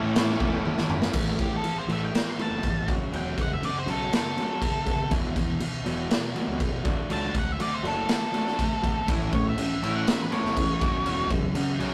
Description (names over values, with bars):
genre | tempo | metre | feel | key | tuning
quiet-loud alternative rock | 121 BPM | 4/4 | straight | A major | A4 = 440 Hz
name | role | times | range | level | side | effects
octave-fuzz lead guitar | melody | 0.0-11.3 s | A3 to C6 | -33 LUFS | equal | distortion
crunchy overdriven guitar | riff | 0.0-11.9 s | E2 to D4 | -37 LUFS | equal | none
distorted electric guitar | riff | 0.0-1.1, 9.1-11.9 s | A2 to F#4 | -32 LUFS | equal | overdrive
fuzz fingered electric bass | bass | 0.0-11.9 s | E1 to A2 | -34 LUFS | equal | overdrive
raw garage drum kit | drums | 0.2-11.9 s | crash cymbal, kick drum, snare drum, toms | -30 LUFS | equal | none
clean electric guitar | arpeggios | 1.1-9.1 s | E2 to D4 | -37 LUFS | equal | none
room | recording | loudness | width
moderate small room ambience, RT60 0.5 s | rough rehearsal-room recording, tube saturation | -27 LUFS | mono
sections
0.0-1.1 A section; 1.1-11.9 B section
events
drum fill 0.6-1.1; lead electric guitar solo 1.1-11.9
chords
0.0 A; 1.1 A5; 2.9 F#m; 5.1 Esus2; 6.8 D/F#; 9.1 A; 10.8 F#5